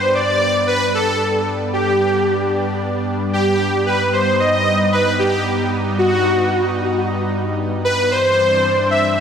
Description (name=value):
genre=synthwave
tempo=113 BPM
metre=4/4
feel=straight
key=G major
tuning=A4 = 440 Hz
part: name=soft supersaw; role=melody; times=0.0-9.2 s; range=F#4 to E5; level=-16 LUFS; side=equal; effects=digital delay
part: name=analog string pad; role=sustained chords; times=0.0-9.2 s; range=G2 to D#4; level=-20 LUFS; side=equal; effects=ensemble chorus
room=wet plate reverb, RT60 3.4 s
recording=bright 1980s-style digital production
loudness=-15 LUFS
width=side -7 dB against mid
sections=0.0-9.2 A section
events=none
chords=0.0 G; 3.9 B/G; 8.1 Cadd9/G